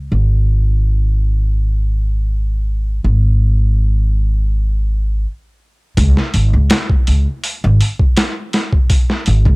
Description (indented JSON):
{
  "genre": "trip hop",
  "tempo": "82 BPM",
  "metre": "4/4",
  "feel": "straight",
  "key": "unclear",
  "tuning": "A4 = 440 Hz",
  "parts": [
    { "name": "upright bass", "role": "bass", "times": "0.0-9.6 s", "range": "G#1 to C#2", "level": "-13 LUFS", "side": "equal", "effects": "tube saturation" },
    { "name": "boom bap sampler-style drum kit", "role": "drums", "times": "6.0-9.6 s", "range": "hi-hat, kick drum, snare drum", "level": "-14 LUFS", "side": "equal", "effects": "none" }
  ],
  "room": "little or no reverb",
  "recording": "dry, gritty hardware recording",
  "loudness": "-13 LUFS",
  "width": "side -29 dB against mid",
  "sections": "0.0-6.0 A section; 6.0-9.6 B section",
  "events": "stop 5.2-6.0",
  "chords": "none"
}